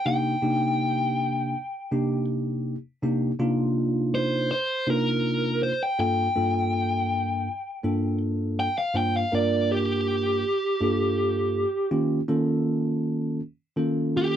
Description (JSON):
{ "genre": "blues", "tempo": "81 BPM", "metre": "4/4", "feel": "straight", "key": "G minor", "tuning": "A4 = 440 Hz", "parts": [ { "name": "overdriven electric guitar", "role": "melody", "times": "0.0-14.4 s", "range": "G4 to G5", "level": "-25 LUFS", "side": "equal", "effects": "none" }, { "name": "bell-like tine electric piano", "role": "accompaniment", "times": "0.1-14.4 s", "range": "G2 to C5", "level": "-24 LUFS", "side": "equal", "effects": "lush chorus" } ], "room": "light reverb", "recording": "dry, close 1970s-style studio recording", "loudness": "-23 LUFS", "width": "side -10 dB against mid", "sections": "0.0-14.4 A section", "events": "none", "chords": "0.1 Cm7; 6.0 Gm7; 11.9 Eb7(no3)" }